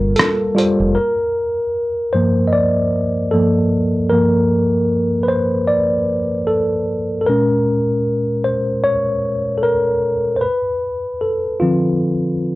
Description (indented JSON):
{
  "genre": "lo-fi hip hop",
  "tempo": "76 BPM",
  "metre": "4/4",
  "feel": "swing 58% on 16ths",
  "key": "unclear",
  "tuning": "A4 = 443 Hz",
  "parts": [
    { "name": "mellow tine electric piano", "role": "accompaniment", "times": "0.0-12.6 s", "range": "G2 to Eb5", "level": "-15 LUFS", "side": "equal", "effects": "medium stereo tremolo, cassette tape, low-pass filter" },
    { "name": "warm analog pad", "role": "sustained chords", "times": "0.0-0.9 s", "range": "Bb2 to F4", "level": "-34 LUFS", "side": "equal", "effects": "chorus, low-pass filter" },
    { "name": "deep dub fingered electric bass", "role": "bass", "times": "0.0-0.9 s", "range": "F1 to G1", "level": "-19 LUFS", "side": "equal", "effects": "none" },
    { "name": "dusty soul sampler-style drum kit", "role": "drums", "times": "0.2-0.8 s", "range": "hi-hat, rim click", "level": "-16 LUFS", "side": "equal", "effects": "none" }
  ],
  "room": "moderate studio reverb, RT60 0.5 s",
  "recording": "worn, warbling old tape, cassette tape, warbly pitch drift",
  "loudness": "-15 LUFS",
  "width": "side -19 dB against mid",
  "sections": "1.0-12.6 A section",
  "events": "tine electric piano solo 1.0-12.6",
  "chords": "0.0 Gm9; 7.3 Bbm7; 10.4 Dm7"
}